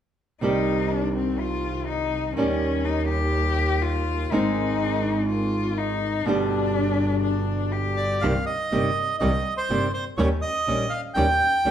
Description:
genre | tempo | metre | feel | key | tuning
tango | 123 BPM | 4/4 | rubato | C minor | A4 = 440 Hz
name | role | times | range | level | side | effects
warm cello | second line | 0.4-8.2 s | C4 to G4 | -27 LUFS | left 6 dB | none
nylon-string guitar | accompaniment | 0.4-11.7 s | B2 to Ab4 | -26 LUFS | right 2 dB | none
bright double bass | bass | 0.4-11.7 s | G1 to Eb2 | -27 LUFS | equal | none
bandoneon | melody | 8.0-11.7 s | C5 to G5 | -24 LUFS | right 2 dB | none
room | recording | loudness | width
wet large studio reverb, RT60 1.0 s | band playing live in one room | -21 LUFS | side -10 dB against mid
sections
0.4-8.2 A section; 8.2-11.7 B section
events
none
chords
0.4 Cm; 2.4 Eb7; 4.3 Ab; 6.3 G; 8.2 Cm; 10.2 Eb7

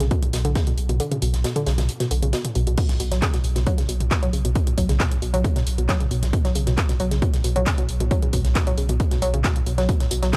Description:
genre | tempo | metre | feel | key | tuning
driving peak-time techno | 135 BPM | 4/4 | straight | B minor | A4 = 438 Hz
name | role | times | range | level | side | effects
woody wave-folded pluck | riff | 0.0-10.4 s | B2 to F#3 | -28 LUFS | equal | chorus, tube saturation, sidechain pumping, tape echo
warm sub bass | bass | 0.0-10.3 s | B1 | -25 LUFS | equal | tube saturation, sidechain pumping, low-pass filter
big rock drum kit | drums | 0.0-10.4 s | hi-hat, snare drum | -39 LUFS | equal | high-pass filter on hats, high-pass filter on snare, high-pass filter on room
techno drum kit | drums | 0.0-10.4 s | crash cymbal, handclaps, hi-hat, tambourine, toms | -31 LUFS | equal | sidechain pumping on hats, sidechain pumping on toms, sidechain pumping on cymbals, sidechain pumping on perc
electronic kick drum | drums | 0.1-10.4 s | none | -25 LUFS | equal | none
room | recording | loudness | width
digital ambience | dry, gritty hardware recording | -22 LUFS | mono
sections
0.0-10.4 A section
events
filter sweep on synth arpeggio sound 0.0-10.4; kick drops out 1.0-2.8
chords
none

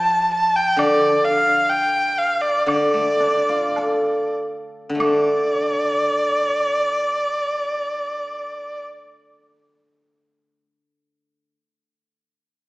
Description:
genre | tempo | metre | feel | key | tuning
chinese traditional, Chinese chamber ensemble | 45-67 BPM | 2/4 | rubato | D yu mode | A4 = 439 Hz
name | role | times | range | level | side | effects
clear erhu | melody | 0.0-8.8 s | D5 to A5 | -19 LUFS | equal | none
steel-string zither | accompaniment | 0.0-11.5 s | D3 to A4 | -22 LUFS | equal | none
woodblock | percussion | 0.8-5.6 s | none | -29 LUFS | right 1 dB | none
room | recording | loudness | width
wet recital hall reverb, RT60 1.5 s | heard from further back in the room, small speaker sound | -17 LUFS | side -21 dB against mid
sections
0.0-5.0 A section; 5.0-10.3 B section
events
slowing down 0.8-5.0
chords
none

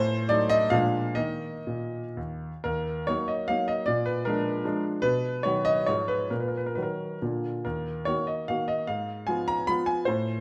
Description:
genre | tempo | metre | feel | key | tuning
classical, romantic triple-time dance for piano with dotted rhythms | 111-164 BPM | 3/4 | rubato | Eb minor | A4 = 445 Hz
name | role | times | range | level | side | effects
clear concert grand piano | solo | 0.0-10.4 s | Eb2 to Cb6 | -28 LUFS | equal | none
room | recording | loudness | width
moderate recital hall reverb, RT60 1.8 s | none | -28 LUFS | mono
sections
0.0-2.7 A section; 2.7-10.4 B section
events
none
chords
0.0 Adim7; 0.7 Bb7; 1.2 Eb5; 2.7 Ebm; 3.9 Bb7; 5.0 B; 5.9 Fdim/Ab; 6.3 Ebm/Bb; 7.2 Bb; 7.6 Ebm; 8.9 Fdim/Ab

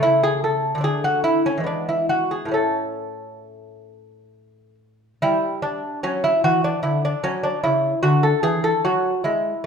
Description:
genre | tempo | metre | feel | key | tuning
classical, baroque-style dance for lute | 66-76 BPM | 3/4 | rubato | A major | A4 = 440 Hz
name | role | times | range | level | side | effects
lute | solo | 0.0-9.7 s | A2 to A4 | -19 LUFS | equal | none
room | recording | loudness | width
wet large studio reverb, RT60 1.3 s | band playing live in one room | -18 LUFS | side -6 dB against mid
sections
0.0-5.2 A section; 5.2-9.7 A section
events
none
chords
0.0 A/C#; 0.8 D5; 1.7 E; 2.5 A; 5.2 Em13; 6.8 D; 7.6 C#madd11

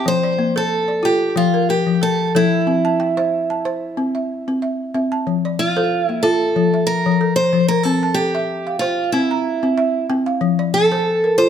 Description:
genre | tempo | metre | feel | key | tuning
west african traditional, West African string and xylophone music | 93 BPM | 4/4 | swing 54% on 16ths | F major | A4 = 440 Hz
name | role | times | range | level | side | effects
picked old ladder-braced acoustic guitar | melody | 0.0-11.5 s | E4 to C5 | -18 LUFS | right 2 dB | tape echo
balafon | arpeggios | 0.0-11.5 s | F3 to Bb5 | -18 LUFS | left 3 dB | none
room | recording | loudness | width
moderate recital hall reverb, RT60 1.5 s | close, detailed microphones | -16 LUFS | side -8 dB against mid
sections
0.0-5.3 A section; 5.3-11.5 B section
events
steel-string acoustic guitar solo 5.3-11.5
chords
0.1 F; 2.7 C; 5.3 F; 7.8 C; 10.4 F

